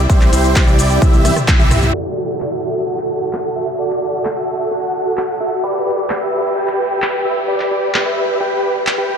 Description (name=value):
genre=EDM, festival progressive house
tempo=130 BPM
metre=4/4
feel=straight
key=D mixolydian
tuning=A4 = 440 Hz
part: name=fat analog bass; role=bass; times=0.0-1.9 s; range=C2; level=-16 LUFS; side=equal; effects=tube saturation, sidechain pumping
part: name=big supersaw lead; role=riff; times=0.1-9.2 s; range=E4 to G5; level=-17 LUFS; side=equal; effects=sidechain pumping, low-pass filter, tape echo
part: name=big-room dance drum kit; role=drums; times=0.1-9.0 s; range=handclaps, hi-hat, rim click, shaker, toms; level=-23 LUFS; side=left 1 dB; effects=none
part: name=electronic kick drum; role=drums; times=0.1-1.6 s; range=none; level=-12 LUFS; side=equal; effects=none
room=wet huge ambient reverb, RT60 7.9 s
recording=dreamy mix soaked in reverb, low-pass filter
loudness=-14 LUFS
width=side -7 dB against mid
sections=0.0-1.9 A section; 1.9-9.2 B section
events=drop 0.0-1.9; drum fill 1.0-1.9; band accent 1.5; filter sweep 1.9-9.2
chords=0.0 C; 1.9 D; 5.6 G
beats=| 0.10 0.56 1.02 1.48 | 1.94 2.40 2.87 3.33 | 3.79 4.25 4.71 5.17 | 5.63 6.10 6.56 7.02 | 7.48 7.94 8.40 8.87